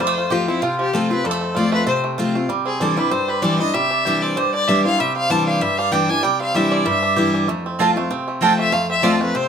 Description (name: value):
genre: bluegrass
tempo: 192 BPM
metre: 4/4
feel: swing 55% on 8ths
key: C major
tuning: A4 = 438 Hz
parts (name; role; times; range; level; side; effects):
- clear fiddle; melody; 0.0-9.5 s; E4 to A5; -21 LUFS; left 3 dB; none
- picked steel-string acoustic guitar; accompaniment; 0.0-9.5 s; F2 to F4; -20 LUFS; left 2 dB; none
- bluegrass banjo; arpeggios; 0.0-9.5 s; D3 to G4; -22 LUFS; right 6 dB; none
- mandolin; stabs; 7.8-9.1 s; C4 to A5; -19 LUFS; right 5 dB; none
room: moderate studio reverb, RT60 0.8 s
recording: minimal, uncompressed stereo recording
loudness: -16 LUFS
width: side -7 dB against mid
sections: 0.0-9.5 A section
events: fiddle solo 0.0-9.5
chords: 0.0 F; 2.5 Cadd9; 7.5 F